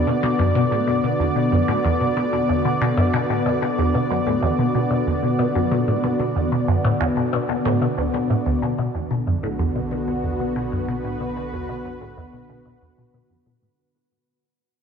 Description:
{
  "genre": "ambient, sequencer-driven space music",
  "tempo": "93 BPM",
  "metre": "4/4",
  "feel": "straight",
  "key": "B minor",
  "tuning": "A4 = 439 Hz",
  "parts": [
    { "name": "lush unison pad", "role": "sustained chords", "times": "0.0-13.8 s", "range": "D3 to D5", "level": "-22 LUFS", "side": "equal", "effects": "chorus" },
    { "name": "resonant blip pluck", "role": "riff", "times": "0.0-13.7 s", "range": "D2 to B2", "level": "-22 LUFS", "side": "equal", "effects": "phaser, lush chorus, ping-pong delay" },
    { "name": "round analog bass", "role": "bass", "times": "8.6-13.8 s", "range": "B1", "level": "-38 LUFS", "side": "right 1 dB", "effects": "none" }
  ],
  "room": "wet plate reverb, RT60 3.2 s",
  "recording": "echo-heavy mix",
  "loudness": "-19 LUFS",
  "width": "side -6 dB against mid",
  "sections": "0.0-8.6 A section; 8.6-13.8 B section",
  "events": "fade-out on analog synth bass 8.6-13.8; fade-out 8.6-13.8; filter sweep on synth arpeggio sound 8.6-13.8",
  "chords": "0.0 Bm"
}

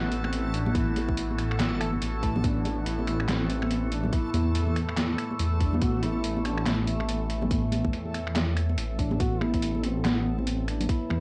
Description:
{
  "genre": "deep dubstep",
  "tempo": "142 BPM",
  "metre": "4/4",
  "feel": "swing 59% on 16ths, half-time",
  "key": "A dorian",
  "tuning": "A4 = 440 Hz",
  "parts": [
    { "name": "dark duduk", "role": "melody", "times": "0.0-11.2 s", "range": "A3 to F#4", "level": "-36 LUFS", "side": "equal", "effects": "cassette tape, dub echo" },
    { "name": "overtone-sweeping drone", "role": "sustained chords", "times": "0.0-11.2 s", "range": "A2 to F#4", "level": "-40 LUFS", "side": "equal", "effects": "chorus, built-in reverb, cassette tape" },
    { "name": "dark detuned saw bass", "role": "bass", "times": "0.0-11.2 s", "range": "A1 to E2", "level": "-31 LUFS", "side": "equal", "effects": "none" },
    { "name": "backwards swelling texture", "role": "texture", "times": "0.0-9.2 s", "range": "A4", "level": "-43 LUFS", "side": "equal", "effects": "built-in reverb, cassette tape" },
    { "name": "trip hop sampler-style drum kit", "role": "drums", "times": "0.1-11.2 s", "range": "finger snaps, handclaps, hi-hat, snare drum", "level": "-36 LUFS", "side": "equal", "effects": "overdrive, cassette tape" },
    { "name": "congas", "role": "percussion", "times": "0.2-11.2 s", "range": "none", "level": "-34 LUFS", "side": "equal", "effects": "none" },
    { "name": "electronic kick drum", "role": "drums", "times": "0.7-11.0 s", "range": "none", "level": "-31 LUFS", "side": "equal", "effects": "cassette tape" },
    { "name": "filtered dub chord stab", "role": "stabs", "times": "1.8-2.3 s", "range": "E3 to A4", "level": "-40 LUFS", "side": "equal", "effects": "none" }
  ],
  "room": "light reverb",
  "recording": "home recording on cassette",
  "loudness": "-27 LUFS",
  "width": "mono",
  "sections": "0.0-9.2 A section; 9.2-11.2 A section",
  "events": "drop 0.0-9.2, 9.2-11.2",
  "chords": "0.0 A5"
}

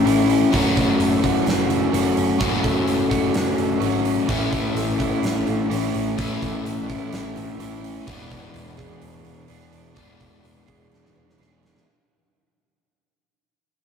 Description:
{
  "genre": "rock, shoegaze and dream pop",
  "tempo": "127 BPM",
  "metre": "4/4",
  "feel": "straight",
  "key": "unclear",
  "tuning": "A4 = 440 Hz",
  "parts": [
    { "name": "picked twelve-string acoustic guitar", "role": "arpeggios", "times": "0.0-11.9 s", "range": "E3 to G#4", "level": "-30 LUFS", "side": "right 3 dB", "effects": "none" },
    { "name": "crunchy overdriven guitar", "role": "riff", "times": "0.0-11.9 s", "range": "E3 to D5", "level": "-23 LUFS", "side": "left 7 dB", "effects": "none" },
    { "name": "overdriven electric guitar", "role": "riff", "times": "0.0-11.9 s", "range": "A2 to G#4", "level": "-25 LUFS", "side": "right 5 dB", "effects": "none" },
    { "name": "vintage muted picked electric bass", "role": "bass", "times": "0.1-11.8 s", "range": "E1 to A1", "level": "-31 LUFS", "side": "right 1 dB", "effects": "none" },
    { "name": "huge arena drum kit", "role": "drums", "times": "0.1-11.9 s", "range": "hi-hat, kick drum, snare drum", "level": "-27 LUFS", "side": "right 1 dB", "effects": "none" }
  ],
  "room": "wet stone room reverb, RT60 0.9 s",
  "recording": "rough rehearsal-room recording, tube saturation",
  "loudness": "-19 LUFS",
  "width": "side -7 dB against mid",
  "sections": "0.0-11.9 A section",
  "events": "fade-out 0.0-11.9; drum fill 10.9-11.9",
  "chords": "0.0 A; 0.5 F#m7; 4.3 A; 8.1 E7"
}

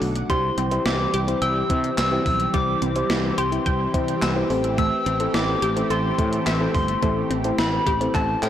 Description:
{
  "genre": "synth-pop",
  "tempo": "107 BPM",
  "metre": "4/4",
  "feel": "straight",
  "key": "unclear",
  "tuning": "A4 = 436 Hz",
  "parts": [
    { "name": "soft round pluck", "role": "accompaniment", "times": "0.0-8.5 s", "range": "A3 to C5", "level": "-27 LUFS", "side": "left 2 dB", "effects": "chorus" },
    { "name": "lush unison pad", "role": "sustained chords", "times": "0.0-8.5 s", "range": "D3 to F#5", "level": "-28 LUFS", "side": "equal", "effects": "chorus, phaser" },
    { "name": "sustaining fretless electric bass", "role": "bass", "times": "0.0-8.5 s", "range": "G1 to C3", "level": "-26 LUFS", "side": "equal", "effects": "none" },
    { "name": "gated 80s digital drum machine", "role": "drums", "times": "0.0-8.5 s", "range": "handclaps, hi-hat, kick drum, snare drum", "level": "-26 LUFS", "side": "equal", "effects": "gated reverb, gated reverb snare" },
    { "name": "soft struck synth lead", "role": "melody", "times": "0.3-8.5 s", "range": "G5 to E6", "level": "-26 LUFS", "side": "left 1 dB", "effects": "chorus" },
    { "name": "resonant blip pluck", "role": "arpeggios", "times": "0.3-8.4 s", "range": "G3 to E6", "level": "-30 LUFS", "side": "equal", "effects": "phaser, analog delay" }
  ],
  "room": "light reverb",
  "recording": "blown-out, overdriven recording, overdrive",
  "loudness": "-19 LUFS",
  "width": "side -10 dB against mid",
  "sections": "0.0-8.5 A section",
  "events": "drum fill 8.1-8.5",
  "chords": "0.3 C; 4.5 Am7"
}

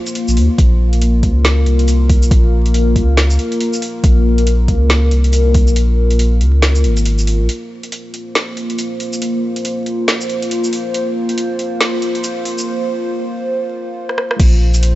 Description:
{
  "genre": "deep dubstep",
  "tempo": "139 BPM",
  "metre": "4/4",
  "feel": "swing 60% on 16ths, half-time",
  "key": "Bb minor",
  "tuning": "A4 = 440 Hz",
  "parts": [
    { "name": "dark analog pad", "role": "sustained chords", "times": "0.0-15.0 s", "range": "Bb3 to C5", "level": "-19 LUFS", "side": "left 1 dB", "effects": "chorus, phaser" },
    { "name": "garage drum kit", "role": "drums", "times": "0.1-14.9 s", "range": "crash cymbal, hi-hat, rim click, shaker, snare drum", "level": "-20 LUFS", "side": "equal", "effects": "overdrive, high-pass filter on hats, studio reverb, high-pass filter on snare, high-pass filter on perc, high-pass filter on cymbals" },
    { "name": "saturated sub bass", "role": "bass", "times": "0.3-7.5, 14.4-15.0 s", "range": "Ab1 to Eb2", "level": "-12 LUFS", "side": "equal", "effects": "tube saturation" },
    { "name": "electronic kick drum", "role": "drums", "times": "0.6-5.7, 14.4-14.5 s", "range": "none", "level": "-12 LUFS", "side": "equal", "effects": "overdrive, studio reverb" }
  ],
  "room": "little or no reverb",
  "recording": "dry, gritty hardware recording, vinyl crackle, high-pass filter, nothing above 7.9 kHz",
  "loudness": "-12 LUFS",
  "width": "side -16 dB against mid",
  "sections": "0.0-7.5 A section; 7.5-14.4 B section",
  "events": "kick drops out 5.8-7.5; build-up 7.5-14.4; filter sweep 7.5-14.4; break 12.7-14.4; drum fill 14.1-14.4",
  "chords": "0.0 Bbmadd9; 7.5 Bbsus2"
}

